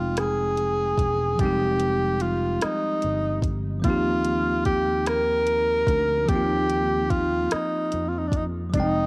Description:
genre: slow six-eight R&B.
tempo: 49 BPM (dotted quarters).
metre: 6/8.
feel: straight.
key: unclear.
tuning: A4 = 439 Hz.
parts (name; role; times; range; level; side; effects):
breathy tenor saxophone; melody; 0.0-9.1 s; D4 to Bb4; -26 LUFS; equal; none.
bell-like tine electric piano; accompaniment; 0.0-9.1 s; F3 to G5; -31 LUFS; equal; cassette tape.
fretless electric bass; bass; 0.0-9.1 s; E1 to F2; -32 LUFS; equal; ensemble chorus.
smooth R&B drum kit; drums; 0.2-8.9 s; hi-hat, kick drum, rim click; -29 LUFS; equal; cassette tape.
room: moderate spring reverb, RT60 2.2 s.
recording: home recording on cassette.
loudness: -24 LUFS.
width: mono.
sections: 0.0-9.1 A section.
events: none.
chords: 0.0 Fm9; 3.8 Eb6.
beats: 0.17 | 1.39 2.62 | 3.84 5.07 | 6.29 7.51 | 8.74.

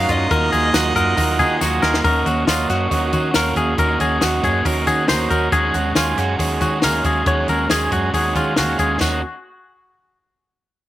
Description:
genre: jangly indie pop.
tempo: 138 BPM.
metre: 4/4.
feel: straight.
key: Eb minor.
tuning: A4 = 440 Hz.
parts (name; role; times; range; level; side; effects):
warm violin; melody; 0.0-1.8 s; Eb5 to F5; -24 LUFS; right 1 dB; slapback echo.
combo organ; accompaniment; 0.0-9.2 s; Gb4 to Bb5; -24 LUFS; right 6 dB; slapback echo.
crunchy overdriven guitar; accompaniment; 0.0-9.2 s; Eb3 to Bb4; -23 LUFS; right 4 dB; slapback echo.
direct-recorded clean electric guitar; arpeggios; 0.0-9.2 s; F4 to Db5; -20 LUFS; left 3 dB; spring reverb.
vintage muted fingered electric bass; bass; 0.0-9.2 s; Eb2 to Eb3; -23 LUFS; left 1 dB; none.
compact cocktail drum kit; drums; 0.1-9.1 s; crash cymbal, hi-hat, kick drum, snare drum; -23 LUFS; left 1 dB; none.
tambourine; percussion; 0.1-9.2 s; none; -35 LUFS; left 8 dB; none.
room: little or no reverb.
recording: recorded outdoors, with no room sound.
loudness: -15 LUFS.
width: side -14 dB against mid.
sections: 0.0-2.0 A section; 2.0-9.0 B section; 9.0-10.8 C section.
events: drum fill 1.6-2.0; transistor combo organ fill 4.7-5.5.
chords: 0.3 Ebmadd9; 2.0 Ebm7; 5.5 Ab7sus4/Eb; 9.0 Ebm7.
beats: | 0.31 0.74 1.18 1.61 | 2.04 2.48 2.91 3.35 | 3.78 4.22 4.65 5.09 | 5.52 5.96 6.39 6.83 | 7.27 7.70 8.14 8.57 | 9.01.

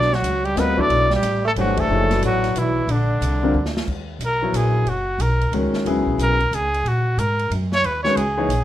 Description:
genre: modal jazz.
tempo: 181 BPM.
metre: 3/4.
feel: swing 63% on 8ths.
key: B phrygian, Eb phrygian from 3.9 s.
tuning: A4 = 440 Hz.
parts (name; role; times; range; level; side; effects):
warm trumpet; melody; 0.0-8.6 s; D4 to D5; -21 LUFS; equal; none.
warm tenor saxophone; second line; 0.0-3.8 s; D3 to D4; -25 LUFS; right 4 dB; none.
warm concert grand piano; accompaniment; 0.0-8.5 s; Db3 to D#5; -22 LUFS; left 3 dB; none.
upright bass; bass; 0.0-8.6 s; F#1 to Bb2; -22 LUFS; equal; none.
open jazz drum kit; drums; 0.0-8.6 s; crash cymbal, hi-hat, kick drum, ride cymbal, snare drum; -32 LUFS; right 1 dB; none.
room: moderate club ambience, RT60 0.5 s.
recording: none.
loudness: -18 LUFS.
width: side -13 dB against mid.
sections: 0.0-3.9 A section; 3.9-8.6 B section.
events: band accent 1.7; drum fill 3.5-3.9; trumpet solo 3.9-8.6.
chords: 0.0 Bm7; 2.9 A#; 3.9 Ebm7; 7.8 Gbsus2.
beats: 0.23 0.56 | 0.90 1.23 1.56 | 1.89 2.22 2.55 | 2.88 3.21 3.54 | 3.88 4.21 4.54 | 4.87 5.20 5.53 | 5.86 6.19 6.52 | 6.85 7.18 7.51 | 7.84 8.17 8.50.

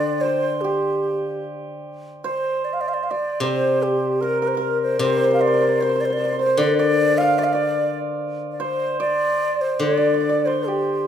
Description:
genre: chinese traditional, Chinese chamber ensemble.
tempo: 75 BPM.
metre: 4/4.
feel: rubato.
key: unclear.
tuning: A4 = 443 Hz.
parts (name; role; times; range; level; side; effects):
breathy bright low xiao; melody; 0.0-11.1 s; G4 to F5; -22 LUFS; equal; none.
hammered dulcimer; second line; 0.0-11.1 s; G4 to F5; -23 LUFS; right 2 dB; none.
steel-string zither; accompaniment; 0.0-11.1 s; C3 to D3; -24 LUFS; left 3 dB; none.
room: moderate recital hall reverb, RT60 1.5 s.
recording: minimal, uncompressed stereo recording.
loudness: -18 LUFS.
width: side -9 dB against mid.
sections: 0.0-11.1 A section.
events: none.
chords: none.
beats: 0.23 1.04 | 1.84 2.63 3.43 4.21 | 5.00 5.79 6.58 7.38 | 8.18 8.99 9.82 10.67.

